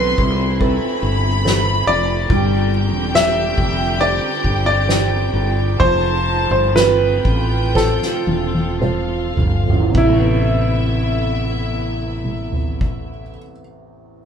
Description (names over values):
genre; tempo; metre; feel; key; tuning
pop ballad; 52-71 BPM; 4/4; straight; A minor; A4 = 440 Hz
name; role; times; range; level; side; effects
warm concert grand piano; melody; 0.0-13.4 s; E4 to E5; -20 LUFS; equal; none
warm studio violin section; second line; 0.0-13.4 s; E5 to C6; -26 LUFS; equal; none
felt-muted upright piano; accompaniment; 0.0-14.3 s; A1 to D5; -24 LUFS; right 3 dB; none
dark studio string section; sustained chords; 0.0-13.4 s; C3 to G4; -27 LUFS; left 1 dB; none
fretless electric bass; bass; 0.0-13.3 s; E1 to C2; -20 LUFS; equal; none
soft-mallet drum kit; drums; 0.2-13.1 s; crash cymbal, kick drum, ride cymbal, snare drum, toms; -22 LUFS; equal; none
room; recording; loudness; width
moderate studio reverb, RT60 0.5 s; band playing live in one room; -15 LUFS; side -7 dB against mid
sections
0.0-9.9 A section; 9.9-14.3 B section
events
slowing down 2.3-9.9; drum fill 7.8-9.9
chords
0.0 Amadd9; 2.3 Gsus4; 5.8 F; 9.9 Amadd9